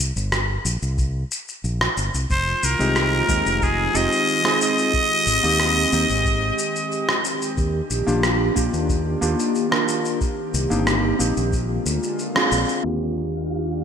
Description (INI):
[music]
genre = sunset chillout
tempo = 91 BPM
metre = 4/4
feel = straight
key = Eb major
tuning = A4 = 444 Hz
[part]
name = fingered electric bass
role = bass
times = 0.0-13.8 s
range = F1 to Eb2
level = -24 LUFS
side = equal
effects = none
[part]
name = electronic shaker and rim click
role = drums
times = 0.2-13.6 s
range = none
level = -24 LUFS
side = equal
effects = gated reverb
[part]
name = electronic kick drum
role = drums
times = 1.0-11.7 s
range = none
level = -24 LUFS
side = equal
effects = none
[part]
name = trumpet with straight mute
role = melody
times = 2.3-7.2 s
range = Ab4 to Eb5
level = -20 LUFS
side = equal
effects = ping-pong delay
[part]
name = airy breathy pad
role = sustained chords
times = 2.3-13.8 s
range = D3 to G4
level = -27 LUFS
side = equal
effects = chorus
[part]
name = mellow electric guitar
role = accompaniment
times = 2.8-13.8 s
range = Ab3 to Bb4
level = -24 LUFS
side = equal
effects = auto-pan, ping-pong delay
[part]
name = twinkling granular texture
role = texture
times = 13.3-13.8 s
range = F4 to F5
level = -32 LUFS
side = right 1 dB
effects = built-in reverb, analog chorus
[sound]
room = wet lush hall reverb, RT60 2.2 s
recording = bright 1980s-style digital production, low-pass filter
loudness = -18 LUFS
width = side -7 dB against mid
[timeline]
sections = 0.0-12.8 A section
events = band accent 12.4-12.7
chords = 0.0 C5; 2.3 Fm7; 4.9 Abmaj7; 7.6 Ebmaj7; 10.2 Cm7; 11.5 Bb7; 12.8 Ebmaj7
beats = 0.32 0.98 1.64 | 2.30 2.96 3.62 4.28 | 4.94 5.60 6.25 6.91 | 7.57 8.23 8.89 9.55 | 10.21 10.87 11.53 12.19 | 12.85 13.51